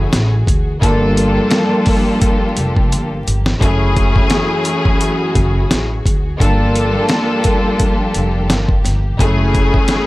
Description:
hip hop, boom-bap hip-hop; 86 BPM; 4/4; swing 55% on 16ths; A4 = 440 Hz
warm studio string section; accompaniment; 0.0-10.1 s; F#2 to A4; -16 LUFS; left 1 dB; high-pass filter, low-pass filter
warm studio string section; sustained chords; 0.0-10.1 s; E3 to G#4; -24 LUFS; equal; high-pass filter, low-pass filter
upright bass; bass; 0.0-9.7 s; F1 to D2; -17 LUFS; equal
dusty soul sampler-style drum kit; drums; 0.1-10.1 s; hi-hat, kick drum, snare drum; -16 LUFS; equal
small room ambience; vinyl crackle; -12 LUFS; side -19 dB against mid
0.0-10.1 A section
drum fill 2.9-3.6
0.0 F#m9; 0.8 Gm9; 3.6 F#m9; 6.4 Gm9; 9.2 F#m9

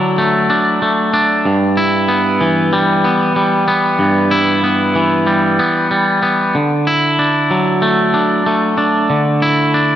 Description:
rock; 94 BPM; 4/4; straight; A4 = 440 Hz
twangy electric guitar; solo; 0.0-10.0 s; G2 to E4; -12 LUFS; equal; spring reverb, slapback echo
moderate lush hall reverb, RT60 1.8 s; big arena sound; -12 LUFS; side -11 dB against mid
0.0-10.0 A section
0.0 Dadd9; 1.4 G6; 6.6 Dadd9

